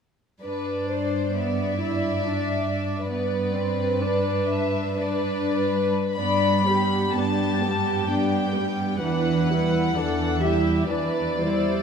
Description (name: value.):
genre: classical, slow romantic movement for string orchestra.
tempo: 46-70 BPM.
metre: 3/4.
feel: rubato.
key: G major.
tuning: A4 = 439 Hz.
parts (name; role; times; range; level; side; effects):
warm studio violin section; melody; 0.4-11.8 s; B4 to B5; -28 LUFS; left 5 dB; none.
warm studio violin section; second line; 0.4-11.8 s; G4 to D5; -28 LUFS; left 1 dB; none.
rich studio viola section; accompaniment; 0.4-11.8 s; E3 to E4; -27 LUFS; equal; none.
warm studio cello section; bass; 0.4-11.8 s; E2 to G2; -27 LUFS; right 4 dB; none.
room: wet recital hall reverb, RT60 1.6 s.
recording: none.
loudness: -21 LUFS.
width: side -6 dB against mid.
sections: 0.4-6.2 A section; 6.2-11.8 B section.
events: none.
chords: 0.4 G; 9.0 Em7.